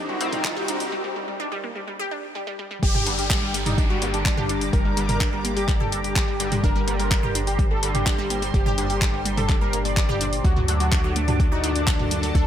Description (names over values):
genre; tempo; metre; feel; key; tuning
melodic techno; 126 BPM; 4/4; straight; G harmonic minor; A4 = 443 Hz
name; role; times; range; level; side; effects
wide unison lead; melody; 0.0-12.5 s; D4 to D5; -29 LUFS; equal; tape echo
sweeping resonant pad; sustained chords; 0.0-12.5 s; F#4 to D6; -34 LUFS; right 1 dB; chorus, sidechain pumping
wide unison pluck; arpeggios; 0.0-12.4 s; F#3 to G4; -30 LUFS; equal; phaser, sidechain pumping, tape echo
sync-sweep polysynth; stabs; 0.0-12.5 s; G2 to D4; -31 LUFS; left 3 dB; chorus, phaser, sidechain pumping, tape echo
tight sequencer bass; bass; 0.0-12.5 s; G1 to D2; -28 LUFS; equal; sidechain pumping, high-pass filter
riser and downlifter; sound effects; 0.0-6.6 s; none; -31 LUFS; equal; none
granular cloud pad; texture; 0.1-12.5 s; Eb4 to Bb5; -37 LUFS; equal; none
deep house drum kit; drums; 0.2-12.4 s; handclaps, hi-hat, toms; -27 LUFS; equal; overdrive, sidechain pumping on hats, sidechain pumping on toms
electronic kick drum; drums; 0.4-12.4 s; none; -22 LUFS; equal; overdrive
bowed-like drone; drone; 7.4-12.5 s; G2 to Bb2; -39 LUFS; left 1 dB; none
room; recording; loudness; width
light reverb, digital ambience; high-pass filter; -20 LUFS; side -10 dB against mid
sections
0.0-2.8 A section; 2.8-12.5 B section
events
build-up 0.0-2.8; riser 0.0-0.9; break 0.9-2.8; drop 2.8-12.5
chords
0.0 Cm7; 2.8 Gm; 10.4 D